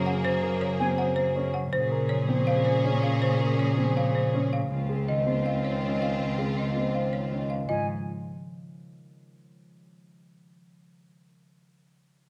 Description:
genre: classical, minimalist pattern music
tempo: 161 BPM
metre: 4/4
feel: straight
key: Ab mixolydian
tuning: A4 = 438 Hz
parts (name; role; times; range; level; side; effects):
- concert harp; accompaniment; 0.0-11.5 s; Db3 to Bb3; -32 LUFS; equal; none
- clear studio violin section; sustained chords; 0.0-7.5 s; Bb3 to Ab4; -36 LUFS; equal; none
- dark grand piano; arpeggios; 0.0-7.9 s; C4 to C5; -34 LUFS; equal; none
- rich cello; bass; 0.0-7.9 s; Db2 to Bb2; -32 LUFS; equal; none
- folk marimba with hard mallets; melody; 0.1-7.9 s; C5 to Gb5; -35 LUFS; equal; none
- mellow concert flute; arpeggios; 0.8-0.9, 7.7-7.9 s; Ab5; -36 LUFS; equal; none
room: wet recital hall reverb, RT60 1.3 s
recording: none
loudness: -26 LUFS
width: mono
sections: 0.0-7.7 A section; 7.7-10.7 B section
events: none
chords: 0.0 Gbadd9; 1.7 Bbm7; 4.7 Dbmaj7; 7.7 Ab5

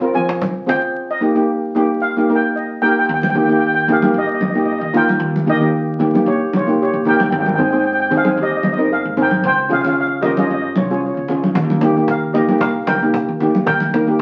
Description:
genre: calypso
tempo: 113 BPM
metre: 4/4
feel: swing 54% on 16ths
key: unclear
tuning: A4 = 440 Hz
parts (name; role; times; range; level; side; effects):
- steel pan; accompaniment; 0.0-14.2 s; Bb3 to Bb4; -19 LUFS; equal; none
- upright bass; bass; 0.0-14.2 s; G1 to Eb3; -27 LUFS; equal; none
- steel pan; melody; 0.1-14.2 s; F4 to Ab5; -21 LUFS; equal; none
- cajon; drums; 0.1-0.9, 11.6-14.2 s; none; -28 LUFS; equal; none
- congas; percussion; 0.4-13.9 s; none; -24 LUFS; equal; none
room: wet studio reverb, RT60 0.6 s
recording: very old 78 rpm record, vinyl crackle, nothing above 10.5 kHz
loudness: -17 LUFS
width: mono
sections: 0.0-3.1 A section; 3.1-14.2 B section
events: steel pan solo 0.0-3.1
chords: 0.0 Fm; 0.9 Eb; 3.1 Eb7; 7.3 Abmaj7; 9.4 Dbmaj7; 11.6 Eb7

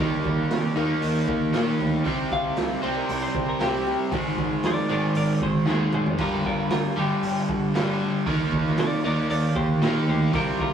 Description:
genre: quiet-loud alternative rock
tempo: 116 BPM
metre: 4/4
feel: straight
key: unclear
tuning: A4 = 440 Hz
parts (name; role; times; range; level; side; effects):
- semi-hollow electric guitar; melody; 0.0-10.7 s; F4 to F5; -29 LUFS; left 1 dB; none
- picked old ladder-braced acoustic guitar; arpeggios; 0.0-6.2 s; Ab2 to Eb4; -32 LUFS; left 3 dB; none
- overdriven electric guitar; riff; 0.0-10.7 s; G2 to Eb4; -24 LUFS; right 1 dB; none
- growling picked electric bass; bass; 0.0-10.7 s; F1 to C3; -31 LUFS; equal; overdrive
- raw garage drum kit; drums; 0.2-10.7 s; crash cymbal, hi-hat, kick drum, snare drum, toms; -30 LUFS; right 2 dB; none
room: wet stone room reverb, RT60 1.0 s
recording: rough rehearsal-room recording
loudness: -21 LUFS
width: side -8 dB against mid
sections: 0.0-10.7 A section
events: clean electric guitar solo 0.0-10.7; drum fill 5.7-6.2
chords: 0.0 Eb; 2.1 Cm; 4.1 Ab; 6.2 G5; 8.3 Eb

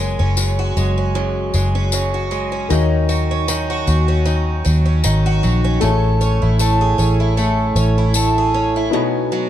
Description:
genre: acoustic pop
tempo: 77 BPM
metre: 4/4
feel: swing 55% on 16ths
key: unclear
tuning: A4 = 440 Hz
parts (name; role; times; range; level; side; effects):
- picked twelve-string acoustic guitar; accompaniment; 0.0-9.5 s; F#2 to G#4; -19 LUFS; right 2 dB; none
- warm baby grand piano; accompaniment; 0.0-9.5 s; A3 to C#5; -26 LUFS; left 8 dB; none
- vintage muted fingered electric bass; bass; 0.0-8.9 s; F#1 to D#2; -17 LUFS; equal; none
- tambourine; percussion; 0.4-8.3 s; none; -27 LUFS; left 6 dB; none
room: light reverb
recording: dark, warm production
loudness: -14 LUFS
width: side -11 dB against mid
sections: 0.0-9.5 A section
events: none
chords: 0.0 F#add9; 2.7 D#m7; 5.8 Amaj7; 8.9 Badd9

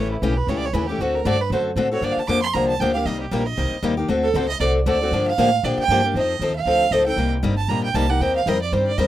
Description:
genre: acoustic string swing (jazz manouche)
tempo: 233 BPM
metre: 4/4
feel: swing 56% on 8ths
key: G minor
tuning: A4 = 441 Hz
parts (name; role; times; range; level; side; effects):
- warm violin; second line; 0.0-9.1 s; E4 to D6; -23 LUFS; right 6 dB; none
- picked steel-string acoustic guitar; accompaniment; 0.0-9.1 s; C3 to Bb4; -21 LUFS; left 3 dB; none
- upright bass; bass; 0.0-9.1 s; G1 to Bb2; -25 LUFS; equal; none
room: little or no reverb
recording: rough home demo mix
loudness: -18 LUFS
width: side -13 dB against mid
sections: 0.0-6.2 A section; 6.2-9.1 A section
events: violin solo 0.0-9.1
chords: 0.0 A7; 1.0 D7; 2.0 Gm7; 3.1 Cm7; 4.1 D7; 5.1 Gm7; 6.2 F7; 7.2 Cm7; 8.2 Eb6

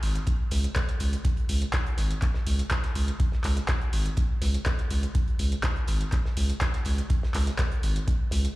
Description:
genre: acid house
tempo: 123 BPM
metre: 4/4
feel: straight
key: unclear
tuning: A4 = 440 Hz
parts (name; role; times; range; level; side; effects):
- saturated sub bass; bass; 0.0-8.5 s; G#1 to C#2; -25 LUFS; equal; tube saturation, sidechain pumping
- booming analog drum machine; drums; 0.0-8.5 s; handclaps, hi-hat; -33 LUFS; equal; none
- damped 70s drum kit; drums; 0.0-8.4 s; hi-hat, snare drum; -43 LUFS; right 1 dB; sidechain pumping on hats, high-pass filter on hats, high-pass filter on snare, high-pass filter on room
- electronic kick drum; drums; 0.3-8.2 s; none; -26 LUFS; equal; none
room: little or no reverb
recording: played on a big sound system in a bare room, large studio reverb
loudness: -24 LUFS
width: side -19 dB against mid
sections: 0.0-8.6 A section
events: none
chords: none

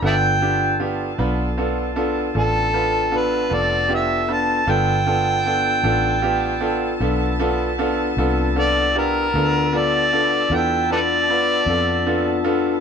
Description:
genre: slow blues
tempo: 52 BPM (dotted quarters)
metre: 12/8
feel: straight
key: G mixolydian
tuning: A4 = 439 Hz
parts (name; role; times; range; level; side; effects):
- bright grand piano; accompaniment; 0.0-12.7 s; B3 to B4; -23 LUFS; right 2 dB; none
- bright horn section; sustained chords; 0.0-12.8 s; B3 to A5; -29 LUFS; right 1 dB; none
- mellow tonewheel organ; sustained chords; 0.0-12.8 s; B3 to A5; -28 LUFS; left 6 dB; slow rotary speaker
- vintage muted fingered electric bass; bass; 0.0-12.8 s; F1 to F2; -25 LUFS; equal; none
- overdriven harmonica; melody; 0.1-12.4 s; A4 to A5; -19 LUFS; equal; none
room: moderate small room ambience, RT60 0.5 s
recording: band playing live in one room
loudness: -17 LUFS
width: side -6 dB against mid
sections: 0.0-12.8 A section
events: harmonica solo 0.0-12.8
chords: 0.0 G9

